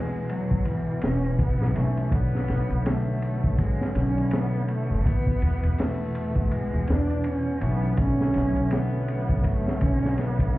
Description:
trip hop; 82 BPM; 4/4; swing 59% on 16ths; B dorian; A4 = 441 Hz
warm cello; melody; 0.0-10.6 s; E3 to D4; -30 LUFS; right 1 dB; vintage 12-bit sampler grit, tape echo
percussive tonewheel organ; accompaniment; 0.0-10.6 s; B2 to C#4; -30 LUFS; equal; overdrive, harmonic tremolo, vintage 12-bit sampler grit, tape echo
upright bass; bass; 0.0-10.6 s; E1 to E2; -26 LUFS; equal; tube saturation
crunchy breakbeat drum kit; drums; 0.3-10.5 s; hi-hat, kick drum, ride cymbal, snare drum; -28 LUFS; equal
small room ambience; heard muffled through a wall, club reverb, EQ; -22 LUFS; side -17 dB against mid
0.0-10.6 A section
0.0 Esus4; 2.1 Bm7; 5.1 Esus4; 8.0 Bm7

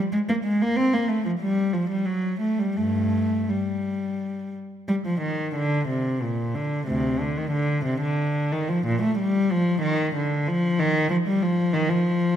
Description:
classical, baroque-style suite movement for unaccompanied cello; 83-96 BPM; 3/4; rubato; G minor; A4 = 440 Hz
warm cello; solo; 0.0-12.4 s; D2 to C4; -22 LUFS; equal
moderate scoring stage reverb, RT60 1.8 s; -22 LUFS; side -10 dB against mid
0.0-4.9 A section; 4.9-12.4 B section

